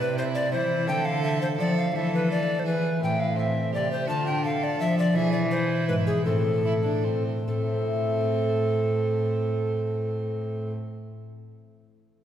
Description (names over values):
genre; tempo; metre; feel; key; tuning
classical, renaissance-style consort dance; 144-170 BPM; 3/4; straight; A minor; A4 = 440 Hz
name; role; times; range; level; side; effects
mellow hollow tenor recorder; melody; 0.0-10.7 s; G#4 to A5; -28 LUFS; equal; none
rich violin; second line; 0.0-10.7 s; C4 to A4; -34 LUFS; right 4 dB; none
concert harp; accompaniment; 0.0-11.4 s; G#2 to E5; -30 LUFS; left 3 dB; none
dark cello; bass; 0.0-10.7 s; G#2 to F3; -28 LUFS; right 1 dB; none
room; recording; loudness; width
wet church reverb, RT60 2.7 s; heard from further back in the room; -23 LUFS; side -10 dB against mid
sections
0.0-7.5 A section; 7.5-9.9 B section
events
slowing down 4.6-7.5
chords
0.0 C; 0.9 Dm; 1.9 Esus4; 2.7 E; 3.0 Am; 4.1 Dm; 5.2 E; 6.3 Am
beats
0.17 0.52 | 0.88 1.23 1.59 | 1.94 2.30 2.66 | 3.02 3.37 3.73 | 4.09 4.45 4.80 | 5.16 5.52 5.88 | 6.26 6.65 7.05 | 7.46 7.88 8.29 | 8.71 9.12 9.53